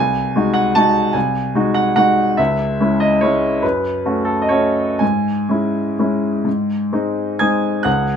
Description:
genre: classical, piano waltz.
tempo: 111-154 BPM.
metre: 3/4.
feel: rubato.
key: unclear.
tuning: A4 = 437 Hz.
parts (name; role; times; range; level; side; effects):
clear grand piano; solo; 0.0-8.2 s; B#1 to G#6; -15 LUFS; equal; none.
room: light reverb.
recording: none.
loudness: -15 LUFS.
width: side -7 dB against mid.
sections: 0.0-7.9 A section.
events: none.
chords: 0.0 G#7/B#; 2.4 C#m; 3.6 F#m; 5.0 C#m/G#; 6.5 G#.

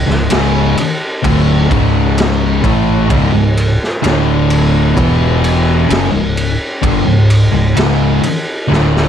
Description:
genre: stoner and doom metal.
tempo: 64 BPM.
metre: 4/4.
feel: straight.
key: C# minor.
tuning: A4 = 440 Hz.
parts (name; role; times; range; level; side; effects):
fingered electric bass; bass; 0.0-9.1 s; C#1 to A1; -18 LUFS; equal; overdrive.
distorted electric guitar; riff; 0.1-9.1 s; C#2 to A3; -17 LUFS; equal; overdrive.
thick fuzz guitar; riff; 0.1-9.1 s; C#2 to A3; -15 LUFS; left 7 dB; distortion.
thick fuzz guitar; riff; 0.1-9.1 s; C#2 to A3; -17 LUFS; right 7 dB; distortion.
raw garage drum kit; drums; 0.1-9.1 s; kick drum, ride cymbal, snare drum; -17 LUFS; equal; none.
room: light reverb.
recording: dark, warm production.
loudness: -10 LUFS.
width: side -9 dB against mid.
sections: 0.0-9.1 A section.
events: drum fill 8.7-9.1.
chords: 0.0 C#m; 4.0 D5; 5.0 E5; 5.9 C#5.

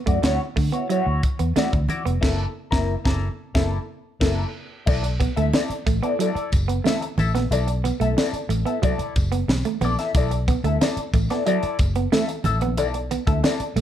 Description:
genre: funk.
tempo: 91 BPM.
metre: 4/4.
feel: straight.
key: B minor.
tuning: A4 = 440 Hz.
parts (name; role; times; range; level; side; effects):
clean electric guitar; accompaniment; 0.1-13.8 s; A#3 to E5; -26 LUFS; left 5 dB; wah.
semi-hollow electric guitar; riff; 0.1-13.8 s; F#3 to B3; -27 LUFS; right 8 dB; none.
vintage muted fingered electric bass; bass; 0.1-13.8 s; E#1 to D3; -24 LUFS; equal; none.
crisp fusion drum kit; drums; 0.1-13.8 s; crash cymbal, hi-hat, kick drum, snare drum; -24 LUFS; equal; none.
congas; percussion; 0.2-13.6 s; none; -30 LUFS; right 2 dB; none.
tambourine; percussion; 4.9-13.8 s; none; -43 LUFS; left 4 dB; none.
room: light reverb.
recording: dark, warm production.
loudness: -20 LUFS.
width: side -11 dB against mid.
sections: 0.0-4.9 A section; 4.9-13.8 B section.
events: band accent 2.2-4.9.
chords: 0.0 Dmaj9; 2.2 F#7#9; 4.9 Bm7.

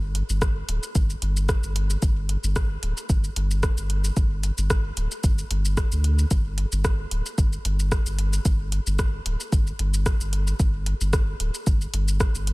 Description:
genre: dub techno.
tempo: 112 BPM.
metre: 4/4.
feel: swing 54% on 16ths.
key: unclear.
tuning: A4 = 441 Hz.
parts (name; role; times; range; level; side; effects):
pure sine sub bass; bass; 0.0-12.5 s; D1 to D2; -24 LUFS; equal; sidechain pumping.
deep house drum kit; drums; 0.1-12.5 s; hi-hat, rim click, shaker; -31 LUFS; equal; soft clipping on snare, small room ambience, dub echo.
electronic kick drum; drums; 0.4-12.3 s; none; -22 LUFS; equal; small room ambience.
room: digital ambience.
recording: dense, heavily limited modern master.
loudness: -21 LUFS.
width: side -23 dB against mid.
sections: 0.0-12.5 A section.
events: none.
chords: none.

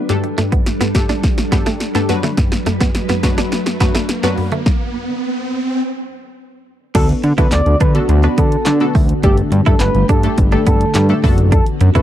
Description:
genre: dance-pop.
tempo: 105 BPM.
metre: 4/4.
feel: straight.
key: D major.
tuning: A4 = 440 Hz.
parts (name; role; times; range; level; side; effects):
punchy chord stab; accompaniment; 0.0-12.0 s; F#3 to B4; -22 LUFS; left 2 dB; chorus, sidechain pumping, low-pass filter.
soft string machine; sustained chords; 0.0-12.0 s; D3 to B4; -24 LUFS; equal; ensemble chorus, sidechain pumping, low-pass filter.
mallet-like synth pluck; arpeggios; 0.0-4.6 s; F#2 to D3; -23 LUFS; left 1 dB; chorus, sidechain pumping, low-pass filter, tape echo.
direct-recorded clean electric guitar; riff; 0.0-12.0 s; G3 to E4; -23 LUFS; right 6 dB; wide subtle chorus, low-pass filter.
riser; sound effects; 1.4-5.8 s; none; -25 LUFS; right 1 dB; none.
punchy analog drum machine; drums; 0.1-12.0 s; crash cymbal, handclaps, hi-hat, kick drum, snare drum; -15 LUFS; equal; none.
expressive synth lead; melody; 6.9-12.0 s; G4 to D5; -21 LUFS; equal; chorus, sidechain pumping, tape echo.
fat analog bass; bass; 6.9-12.0 s; F#1 to D3; -14 LUFS; equal; sidechain pumping.
room: little or no reverb.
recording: dry, close 1970s-style studio recording.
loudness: -13 LUFS.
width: side -12 dB against mid.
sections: 0.0-7.0 A section; 7.0-12.0 B section.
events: build-up 0.0-7.0; drum fill 0.0-4.7; filter sweep 0.0-7.0; riser 1.4-7.0; stop 4.7-7.0; drop 7.0-12.0.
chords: 0.1 Gsus2; 2.1 D6/F#; 4.7 N.C.; 7.0 D6; 9.2 Gsus2; 11.2 D6/F#.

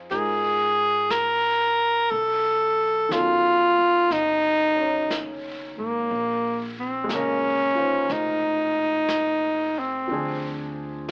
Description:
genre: jazz ballad.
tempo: 60 BPM.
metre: 4/4.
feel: swing 68% on 8ths.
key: Bb minor.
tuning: A4 = 440 Hz.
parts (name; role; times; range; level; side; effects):
clear grand piano; accompaniment; 0.0-11.1 s; B2 to C#5; -32 LUFS; equal; none.
upright bass; bass; 0.0-11.1 s; F1 to Ab2; -41 LUFS; equal; none.
breathy tenor saxophone; melody; 0.1-10.8 s; Bb3 to Bb4; -20 LUFS; equal; none.
jazz brush drum kit; drums; 0.1-11.1 s; brushed snare drum, hi-hat, snare drum; -37 LUFS; equal; none.
room: moderate studio reverb, RT60 0.8 s.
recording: AM radio sound.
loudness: -20 LUFS.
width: side -38 dB against mid.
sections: 0.0-11.1 A section.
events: none.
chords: 0.0 Fm7; 2.1 B9; 6.1 Bbm9; 10.1 Dm7b5.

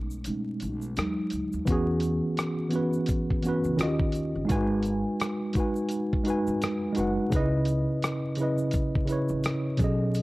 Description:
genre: lo-fi hip hop.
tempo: 85 BPM.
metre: 4/4.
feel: swing 58% on 16ths.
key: E major.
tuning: A4 = 435 Hz.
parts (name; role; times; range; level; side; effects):
mellow tine electric piano; accompaniment; 0.0-10.2 s; B2 to G#5; -26 LUFS; equal; medium stereo tremolo, cassette tape.
upright bass; bass; 0.0-10.2 s; F#1 to B2; -34 LUFS; equal; none.
egg shaker; percussion; 0.1-10.2 s; none; -51 LUFS; left 4 dB; none.
dusty soul sampler-style drum kit; drums; 0.2-10.2 s; hi-hat, kick drum, rim click; -30 LUFS; equal; none.
room: light reverb.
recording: dry, gritty hardware recording, vinyl crackle.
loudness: -25 LUFS.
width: side -20 dB against mid.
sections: 0.0-1.7 A section; 1.7-10.2 B section.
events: tine electric piano solo 0.0-1.7; kick muted 0.3-1.7.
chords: 0.0 B13; 1.0 Emaj9; 1.7 E69; 3.8 D#7; 4.5 G#m7; 7.3 C#m9.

